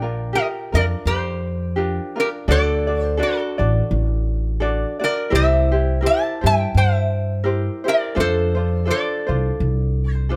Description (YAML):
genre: Hawaiian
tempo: 84 BPM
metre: 4/4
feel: swing 56% on 8ths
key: Bb major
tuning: A4 = 439 Hz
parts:
  - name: metal-body resonator slide guitar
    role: melody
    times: 0.0-10.4 s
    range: F#4 to A5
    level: -24 LUFS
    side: equal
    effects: none
  - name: ukulele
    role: accompaniment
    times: 0.0-10.4 s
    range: D4 to D5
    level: -27 LUFS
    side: equal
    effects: none
  - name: upright bass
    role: bass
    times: 0.0-10.4 s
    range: A1 to G2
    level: -22 LUFS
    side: equal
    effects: none
room: light reverb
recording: close, detailed microphones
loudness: -20 LUFS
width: mono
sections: 0.0-10.4 A section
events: none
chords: 0.0 Bb6; 2.5 D; 5.3 C7; 8.2 F6